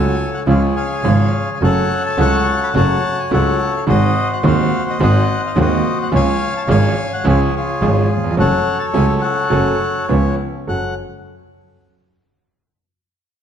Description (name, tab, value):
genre	tango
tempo	106 BPM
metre	4/4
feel	rubato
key	F# harmonic minor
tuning	A4 = 437 Hz
part	bandoneon	melody	0.0-10.9 s	E#4 to C#6	-19 LUFS	left 3 dB	none
part	clear concert grand piano	accompaniment	0.0-10.9 s	D#1 to A4	-18 LUFS	right 2 dB	none
part	clear double bass	bass	0.0-10.9 s	F#1 to D#2	-18 LUFS	equal	none
room	moderate recital hall reverb, RT60 1.6 s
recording	dark, warm production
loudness	-14 LUFS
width	side -8 dB against mid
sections	0.0-10.7 A section; 10.7-12.9 B section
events	none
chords	0.5 C#; 1.6 F#m; 3.9 G#7; 6.1 C#; 8.4 F#m; 10.1 C#7; 10.7 F#m